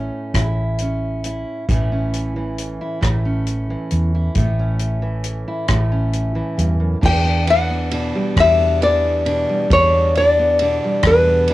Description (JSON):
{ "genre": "acoustic folk-pop ballad", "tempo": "45 BPM (dotted quarters)", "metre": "6/8", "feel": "straight", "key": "unclear", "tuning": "A4 = 439 Hz", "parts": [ { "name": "nylon-string guitar", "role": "melody", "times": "0.0-1.2, 7.1-11.5 s", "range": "B4 to G5", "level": "-15 LUFS", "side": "left 2 dB", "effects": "cassette tape" }, { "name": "fingerpicked steel-string acoustic guitar", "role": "accompaniment", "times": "0.0-11.5 s", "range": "E2 to E4", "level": "-23 LUFS", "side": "right 1 dB", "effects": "cassette tape" }, { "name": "vintage muted fingered electric bass", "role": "bass", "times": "0.0-11.5 s", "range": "A1 to E2", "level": "-20 LUFS", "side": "equal", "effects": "none" }, { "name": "natural country drum kit", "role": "drums", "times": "0.3-11.5 s", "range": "crash cymbal, hi-hat, kick drum, ride cymbal, rim click", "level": "-23 LUFS", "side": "equal", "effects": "cassette tape" } ], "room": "light reverb", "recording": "home recording on cassette", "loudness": "-16 LUFS", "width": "side -16 dB against mid", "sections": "0.0-1.7 A section; 1.7-7.0 B section; 7.0-11.5 C section", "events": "none", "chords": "0.0 A; 7.0 Em7" }